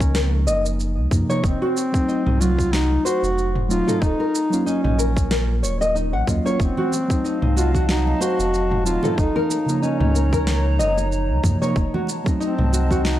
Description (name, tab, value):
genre	organic downtempo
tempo	93 BPM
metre	4/4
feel	swing 56% on 16ths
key	F phrygian dominant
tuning	A4 = 440 Hz
part	mellow duduk	melody	0.0-13.2 s	C4 to Gb4	-24 LUFS	left 1 dB	analog delay
part	muted felt-like synth keys	accompaniment	0.0-13.2 s	C3 to F4	-26 LUFS	right 1 dB	chorus, sidechain pumping
part	nylon-string guitar	arpeggios	0.0-13.2 s	Gb3 to Gb5	-25 LUFS	left 1 dB	analog delay
part	warm sub bass	bass	0.0-13.2 s	Eb1 to Gb2	-21 LUFS	equal	sidechain pumping
part	deep house drum kit	drums	0.0-13.2 s	shaker, snare drum, toms	-28 LUFS	right 1 dB	none
part	electronic kick drum	drums	0.0-13.0 s	none	-22 LUFS	equal	overdrive
part	warbly tape-like pad	sustained chords	7.0-13.2 s	Gb3 to Bb5	-29 LUFS	right 1 dB	chorus, built-in reverb, sidechain pumping
part	congas	percussion	6.6-13.0 s	none	-31 LUFS	right 3 dB	none
room	light reverb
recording	dry, gritty hardware recording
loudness	-18 LUFS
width	side -13 dB against mid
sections	0.0-13.2 A section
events	none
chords	0.0 Gb6; 1.4 F7b9; 4.0 Ebm7; 6.6 F7b9; 9.2 Gb6; 11.8 F7b9 (rootless)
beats	0.15 0.79 | 1.44 2.08 2.73 3.37 | 4.02 4.66 5.31 5.95 | 6.60 7.24 7.89 8.53 | 9.18 9.82 10.47 11.11 | 11.76 12.40 13.05